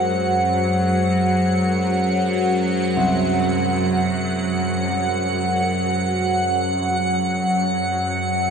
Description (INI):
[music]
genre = dark ambient drone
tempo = free time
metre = none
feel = none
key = unclear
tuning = A4 = 439 Hz
[part]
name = dark analog pad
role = sustained chords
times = 0.0-8.5 s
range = G#3 to B#4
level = -30 LUFS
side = left 3 dB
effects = chorus, shimmer reverb
[part]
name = bowed-like drone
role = drone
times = 0.0-8.5 s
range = F#2 to F#3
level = -20 LUFS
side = right 1 dB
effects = built-in reverb, phaser
[part]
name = icy glass pad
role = texture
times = 0.0-8.5 s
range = F#5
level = -22 LUFS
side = right 1 dB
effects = chorus, built-in reverb, shimmer reverb
[part]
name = warm concert grand piano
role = arpeggios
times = 3.0-8.5 s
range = B#1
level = -32 LUFS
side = equal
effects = analog delay, shimmer reverb
[sound]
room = wet spring reverb, RT60 2.7 s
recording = echo-heavy mix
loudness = -18 LUFS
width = side -6 dB against mid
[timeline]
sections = 0.0-8.5 A section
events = none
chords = 0.0 F#sus2